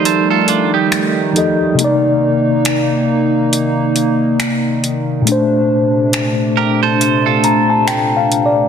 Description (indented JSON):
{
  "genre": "contemporary R&B",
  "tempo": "69 BPM",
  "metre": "4/4",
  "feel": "swing 58% on 16ths",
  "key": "C dorian",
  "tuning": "A4 = 438 Hz",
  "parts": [
    { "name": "mellow tine electric piano", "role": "accompaniment", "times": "0.0-8.7 s", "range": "Bb2 to Bb5", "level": "-15 LUFS", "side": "left 2 dB", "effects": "fast stereo tremolo" },
    { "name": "hollow soft pad", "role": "sustained chords", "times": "0.0-8.7 s", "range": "C3 to Eb4", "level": "-18 LUFS", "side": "right 1 dB", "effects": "chorus" },
    { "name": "clean electric guitar", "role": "arpeggios", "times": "0.0-8.5 s", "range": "D4 to C5", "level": "-17 LUFS", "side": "right 11 dB", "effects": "wide subtle chorus, tape echo" },
    { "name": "smooth R&B drum kit", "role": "drums", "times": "0.1-8.5 s", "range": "finger snaps, hi-hat", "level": "-20 LUFS", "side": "equal", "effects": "soft clipping on snare" }
  ],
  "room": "moderate lush hall reverb, RT60 2.4 s",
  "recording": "dense, heavily limited modern master",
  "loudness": "-12 LUFS",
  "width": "side -7 dB against mid",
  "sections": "0.0-8.7 A section",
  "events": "break 0.0-8.7; tine electric piano fill 7.0-8.7",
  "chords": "0.0 F13; 1.8 Cm9; 5.3 Bbmaj9"
}